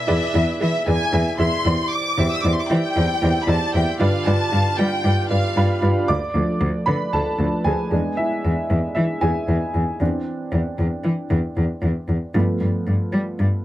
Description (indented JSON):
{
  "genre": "piano-driven pop",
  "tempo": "115 BPM",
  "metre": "4/4",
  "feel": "swing 56% on 16ths",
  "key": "C major",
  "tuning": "A4 = 440 Hz",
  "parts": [
    { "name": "dark studio violin section", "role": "melody", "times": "0.0-5.8 s", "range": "E5 to E6", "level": "-24 LUFS", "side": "left 1 dB", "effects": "none" },
    { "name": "warm upright piano", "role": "accompaniment", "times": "0.0-13.6 s", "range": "G2 to D6", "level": "-23 LUFS", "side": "right 1 dB", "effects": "none" },
    { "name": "clear cello", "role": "bass", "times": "0.1-13.5 s", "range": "D2 to G3", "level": "-20 LUFS", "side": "equal", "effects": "none" }
  ],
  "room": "light reverb",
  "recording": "none",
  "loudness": "-18 LUFS",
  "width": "side -14 dB against mid",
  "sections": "0.0-6.1 A section; 6.1-13.6 B section",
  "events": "upright piano solo 6.1-13.6",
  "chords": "0.0 E7; 1.6 Cadd9/E; 4.0 G7; 6.1 Dm; 7.9 E7; 10.0 Cadd9/E; 12.3 G7"
}